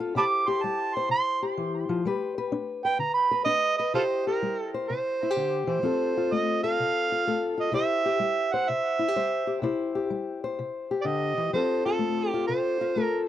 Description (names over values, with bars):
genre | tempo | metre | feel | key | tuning
acoustic country blues, solo or duo | 126 BPM | 4/4 | swing 68% on 8ths | C major | A4 = 440 Hz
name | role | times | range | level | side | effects
fingerpicked old ladder-braced acoustic guitar | accompaniment | 0.0-13.3 s | C3 to C5 | -28 LUFS | left 4 dB | none
mellow harmonica | melody | 0.2-13.2 s | F4 to D6 | -26 LUFS | right 4 dB | tape echo
room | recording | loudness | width
little or no reverb | dry, close 1970s-style studio recording | -24 LUFS | side -11 dB against mid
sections
0.0-3.9 A section; 3.9-13.3 B section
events
harmonica solo 0.0-3.9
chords
0.2 C; 2.0 G; 3.9 C; 5.8 F; 7.7 C; 11.5 F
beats
| 0.16 0.63 1.10 1.57 | 2.04 2.51 2.98 3.45 | 3.92 4.40 4.87 5.34 | 5.82 6.29 6.76 7.24 | 7.71 8.19 8.66 9.14 | 9.61 10.09 10.56 11.04 | 11.51 11.99 12.46 12.94